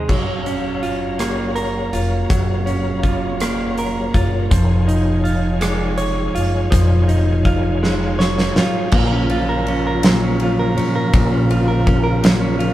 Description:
six-eight pop ballad; 54 BPM (dotted quarters); 6/8; straight; Bb minor; A4 = 442 Hz
direct-recorded clean electric guitar; accompaniment; 0.0-12.7 s; Bb2 to Db5; -20 LUFS; right 2 dB
bright tonewheel organ; sustained chords; 0.0-12.7 s; Db3 to Bb5; -25 LUFS; left 1 dB; chorus vibrato, fast rotary speaker
upright bass; bass; 0.0-12.7 s; F1 to Bb1; -21 LUFS; left 1 dB
huge arena drum kit; drums; 0.1-12.7 s; crash cymbal, hi-hat, kick drum, ride cymbal, rim click, snare drum; -20 LUFS; equal
moderate studio reverb, RT60 0.6 s; band playing live in one room; -15 LUFS; side -14 dB against mid
0.1-8.9 A section; 8.9-12.7 B section
drum fill 7.8-8.9
0.1 Gbmaj7; 4.5 Dbadd9/F; 8.9 Bbm

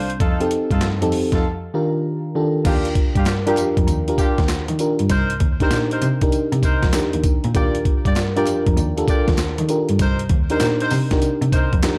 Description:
R&B, new jack swing; 98 BPM; 4/4; swing 65% on 16ths; A4 = 440 Hz
mellow FM electric piano; accompaniment; 0.0-12.0 s; Eb3 to Bb4; -24 LUFS; equal; chorus
warm horn section; stabs; 0.0-11.8 s; D4 to D5; -29 LUFS; equal; tube saturation, digital delay
muted cello; bass; 0.0-12.0 s; C2 to Eb3; -25 LUFS; equal
breakbeat sampler-style drum kit; drums; 0.1-12.0 s; crash cymbal, handclaps, hi-hat, kick drum, snare drum, tambourine; -23 LUFS; equal
group handclap; percussion; 0.8-12.0 s; -40 LUFS; equal
light reverb, digital ambience; dark, warm production; -19 LUFS; mono
0.0-2.6 A section; 2.6-12.0 B section
break 1.4-2.6
0.2 F7; 1.4 Ebmaj7; 2.6 Ebmaj9; 5.1 Cm7; 7.5 Ebmaj9; 10.0 Cm7

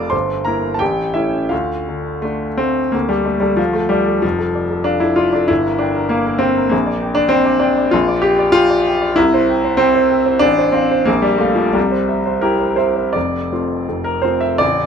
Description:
classical, romantic character piece for solo piano; 81-101 BPM; 2/4; rubato; D minor, F major from 7.9 s; A4 = 442 Hz
clear grand piano; solo; 0.0-14.9 s; A0 to F6; -14 LUFS; equal
moderate studio reverb, RT60 0.6 s; dark, warm production; -14 LUFS; side -7 dB against mid
0.0-2.9 A section; 2.9-13.2 A section; 13.2-14.9 B section
0.1 Edim/G; 0.8 A7; 1.5 Dm; 4.2 Dm/F; 5.5 Gm7; 6.7 Gm/Bb; 9.2 C; 10.4 F/A; 11.1 Bb; 11.8 C; 13.2 F

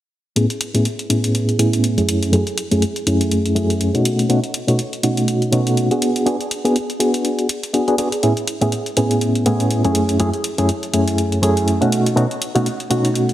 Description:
filtered disco house; 122 BPM; 4/4; swing 57% on 16ths; A major; A4 = 438 Hz
bright reed electric piano; accompaniment; 0.4-13.3 s; F#2 to G#4; -16 LUFS; equal; fast tremolo, phaser, low-pass filter
electronic hi-hat; drums; 0.4-13.3 s; -25 LUFS; left 1 dB
maracas; percussion; 0.4-13.3 s; -49 LUFS; right 2 dB
moderate digital room reverb, RT60 1.0 s; heavily compressed radio sound, multiband compression; -16 LUFS; side -13 dB against mid
0.4-13.3 A section
filter sweep 0.4-13.3
0.4 Amaj9; 2.1 F#m9; 4.0 B9; 6.0 Bm6; 8.2 Amaj9; 10.0 F#m9; 11.9 B9

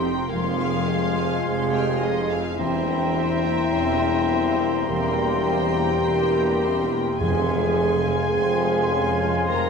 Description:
classical; 52 BPM; 4/4; rubato; F minor; A4 = 440 Hz
dark studio violin section; melody; 0.0-9.7 s; Eb5 to Bb5; -31 LUFS; left 3 dB
flute section; second line; 0.0-9.7 s; C6; -32 LUFS; left 2 dB
warm clarinet; second line; 0.0-9.7 s; F5 to G5; -32 LUFS; left 2 dB
warm symphonic violin section; second line; 0.0-9.7 s; E5 to F6; -35 LUFS; left 3 dB
dark bassoon; accompaniment; 0.0-9.7 s; Ab3 to Db4; -30 LUFS; right 2 dB
warm studio viola section; accompaniment; 0.0-9.7 s; F3 to Ab4; -32 LUFS; right 2 dB
dark French horn section; sustained chords; 0.0-9.7 s; Eb4 to Bb4; -25 LUFS; left 3 dB
warm trombone section; sustained chords; 0.0-9.7 s; E3 to C4; -33 LUFS; right 5 dB
concert harp; arpeggios; 0.0-9.7 s; E3 to C5; -31 LUFS; left 8 dB
dark symphonic double bass section; bass; 0.0-9.7 s; E1 to F1; -33 LUFS; right 3 dB
rich symphonic cello section; bass; 0.0-9.7 s; E2 to F2; -31 LUFS; right 4 dB
warm tuba; bass; 0.0-9.7 s; E1 to F1; -30 LUFS; right 5 dB
clear oboe; second line; 0.3-9.7 s; Ab5 to Bb5; -34 LUFS; right 1 dB
timpani; percussion; 7.2-8.9 s; F2; -32 LUFS; equal
wet scoring stage reverb, RT60 1.9 s; minimal, uncompressed stereo recording; -20 LUFS; side -5 dB against mid
0.0-9.7 A section
0.3 Fm; 2.6 C7/E; 7.2 Fm

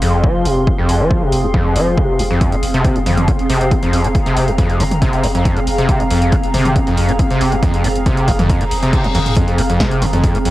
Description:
driving peak-time techno; 138 BPM; 4/4; straight; F minor; A4 = 440 Hz
screaming distorted acid line; riff; 0.0-10.5 s; F2 to F3; -17 LUFS; equal; distortion, analog chorus, sidechain pumping, cassette tape, analog delay
warm sub bass; bass; 0.0-10.5 s; F1; -23 LUFS; equal; overdrive, sidechain pumping, low-pass filter
punchy analog drum machine; drums; 0.0-10.5 s; hi-hat, snare drum, toms; -24 LUFS; equal; overdrive, cassette tape
granular cloud pad; texture; 0.0-10.5 s; C4 to C6; -20 LUFS; equal; built-in reverb, sidechain pumping, cassette tape
electronic kick drum; drums; 0.2-10.3 s; -17 LUFS; equal; overdrive, cassette tape
reverse cymbal; sound effects; 8.7-9.4 s; -26 LUFS; left 5 dB
moderate spring reverb, RT60 1.4 s, digital ambience; home recording on cassette; -12 LUFS; side -16 dB against mid
0.0-10.5 A section
filter sweep on acid bass 0.0-10.5; reverse cymbal 8.7-9.4; drum fill 9.0-9.4
0.0 Fm

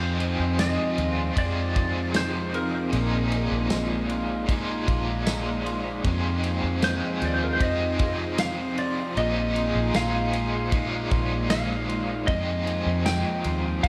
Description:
dream pop; 77 BPM; 4/4; straight; A4 = 440 Hz
clean lap steel guitar; melody; 0.0-13.9 s; Bb4 to G5; -33 LUFS; equal; digital delay
raw garage guitar; accompaniment; 0.0-13.9 s; F2 to F4; -33 LUFS; equal; overdrive, tremolo, lush chorus, slapback echo
granular cloud pad; sustained chords; 0.3-13.9 s; F3 to Ab4; -36 LUFS; equal; built-in reverb
electric guitar at the edge of break-up; arpeggios; 0.0-13.9 s; F2 to F4; -32 LUFS; equal; subtle chorus, digital delay
vintage muted fingered electric bass; bass; 0.0-13.9 s; Bb1 to F2; -32 LUFS; equal
loose indie drum kit; drums; 0.2-13.9 s; kick drum, ride cymbal, snare drum, tambourine; -32 LUFS; equal
moderate lush hall reverb, RT60 1.9 s, small room ambience; big arena sound; -25 LUFS; mono
0.0-13.9 A section
0.0 Fm7; 2.9 Bb7sus4; 6.0 Fm7; 9.2 Bb7sus4; 12.3 Fm7

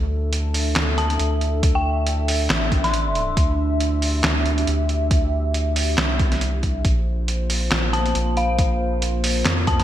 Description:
deep dubstep; 138 BPM; 4/4; swing 56% on 16ths, half-time; D minor; A4 = 440 Hz
dark analog pad; sustained chords; 0.0-9.8 s; Bb3 to E5; -26 LUFS; equal; chorus, phaser
soft dub sub bass; bass; 0.0-9.8 s; A1 to F2; -22 LUFS; equal; tube saturation
trip hop sampler-style drum kit; drums; 0.3-9.8 s; handclaps, hi-hat, snare drum; -24 LUFS; right 1 dB; gated reverb
dark detuned synth bell; melody; 1.0-3.4, 7.9-9.8 s; F5 to C6; -27 LUFS; left 2 dB; chorus, dub echo
electronic kick drum; drums; 1.6-9.8 s; -20 LUFS; equal
light reverb; bright 1980s-style digital production; -18 LUFS; side -12 dB against mid
0.0-9.8 A section
0.0 D5; 6.8 Bb5

